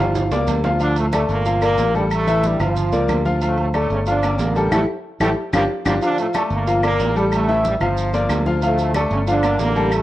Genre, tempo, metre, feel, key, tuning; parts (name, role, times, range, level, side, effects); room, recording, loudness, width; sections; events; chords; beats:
latin, salsa; 184 BPM; 4/4; straight; A4 = 439 Hz
brilliant trombone section; melody; 0.0-10.0 s; G2 to F4; -23 LUFS; right 2 dB; cassette tape, plate reverb
clear baby grand piano; accompaniment; 0.0-10.0 s; E3 to F5; -20 LUFS; left 2 dB; cassette tape, plate reverb
modern bright fingered electric bass; bass; 0.0-10.0 s; G1 to D2; -22 LUFS; equal
congas; percussion; 0.2-10.0 s; -31 LUFS; equal
maracas; percussion; 0.2-10.0 s; -39 LUFS; right 9 dB
timbales and agogo bells; percussion; 0.2-10.0 s; -27 LUFS; right 6 dB
claves; percussion; 1.1-10.0 s; -30 LUFS; left 3 dB
moderate studio reverb, RT60 0.6 s; home recording on cassette; -16 LUFS; side -14 dB against mid
0.0-6.0 A section; 6.0-10.0 A section
drum fill 0.0-0.8, 5.0-6.0; band accent 4.7-6.0
0.2 Gm7; 2.1 A5; 2.8 Gm7; 3.4 Dm; 4.1 Gm7; 4.7 A5; 5.4 Gm7; 7.3 A5; 8.0 Gm7; 8.6 Dm; 9.3 Gm7
0.15 0.48 | 0.81 1.13 1.46 1.78 | 2.11 2.44 2.76 3.09 | 3.42 3.74 4.07 4.39 | 4.72 5.05 5.37 5.70 | 6.02 6.35 6.67 7.00 | 7.32 7.64 7.97 8.29 | 8.62 8.94 9.27 9.59 | 9.91